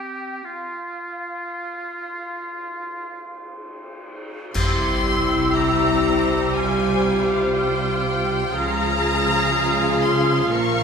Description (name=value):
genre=cinematic, emotional film score for orchestra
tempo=60 BPM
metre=4/4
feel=rubato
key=unclear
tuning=A4 = 436 Hz
part: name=clear clarinet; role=second line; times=0.0-10.8 s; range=C4 to Bb4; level=-28 LUFS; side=equal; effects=none
part: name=clear oboe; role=second line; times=0.0-3.5 s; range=F4 to G4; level=-31 LUFS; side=right 1 dB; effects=none
part: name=flute section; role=second line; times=0.0-10.8 s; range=F5 to F6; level=-29 LUFS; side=equal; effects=none
part: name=cymbal swell, clash cymbals and concert bass drum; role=percussion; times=0.5-6.5 s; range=none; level=-28 LUFS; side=left 1 dB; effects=none
part: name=warm studio violin section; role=melody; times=4.5-10.8 s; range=F5 to Db6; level=-25 LUFS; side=left 2 dB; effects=none
part: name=warm studio viola section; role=accompaniment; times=4.5-10.8 s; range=F3 to F4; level=-26 LUFS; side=right 2 dB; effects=none
part: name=mellow French horn section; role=sustained chords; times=4.5-10.8 s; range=G3 to F4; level=-25 LUFS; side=left 3 dB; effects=none
part: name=rich studio cello section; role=bass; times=4.5-10.8 s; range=Bb2 to Db3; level=-28 LUFS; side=right 5 dB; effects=none
part: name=warm studio violin section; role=second line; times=4.6-10.8 s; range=F4 to F5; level=-28 LUFS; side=left 2 dB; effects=none
part: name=rich chamber double bass section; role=bass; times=4.6-10.8 s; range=Bb1 to Db2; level=-29 LUFS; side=right 4 dB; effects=none
room=moderate scoring stage reverb, RT60 2.0 s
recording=minimal, uncompressed stereo recording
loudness=-19 LUFS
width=side -6 dB against mid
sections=0.0-4.5 A section; 4.5-10.8 A section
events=band accent 4.5-5.6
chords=0.0 N.C.; 4.5 C; 6.6 Fsus2/C; 8.5 Db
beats=| 0.45 1.48 2.50 3.53 | 4.55 5.56 6.55 7.55 | 8.53 9.53 10.52